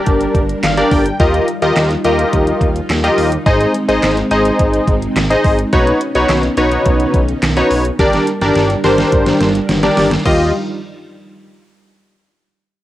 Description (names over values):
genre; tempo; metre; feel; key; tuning
synth-pop; 106 BPM; 4/4; straight; Eb major; A4 = 440 Hz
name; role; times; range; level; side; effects
warm analog keys; accompaniment; 0.0-10.5 s; D4 to G5; -14 LUFS; left 1 dB; chorus
string machine, cellos; sustained chords; 0.0-10.5 s; G3 to Bb4; -21 LUFS; right 1 dB; ensemble chorus
chorused synth bass; bass; 0.1-10.5 s; G1 to Eb2; -20 LUFS; equal; none
pop drum kit; drums; 0.1-10.4 s; crash cymbal, handclaps, hi-hat, kick drum, snare drum; -17 LUFS; equal; overdrive
room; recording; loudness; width
moderate studio reverb, RT60 0.6 s; home recording on cassette; -11 LUFS; side -14 dB against mid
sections
0.0-10.3 A section; 10.3-12.5 B section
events
synth keys fill 0.3-1.2; drum fill 8.0-10.3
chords
0.0 Gm; 1.2 Ebadd9; 3.5 Ab; 5.7 Badd9; 8.0 Gm; 10.3 Ebadd9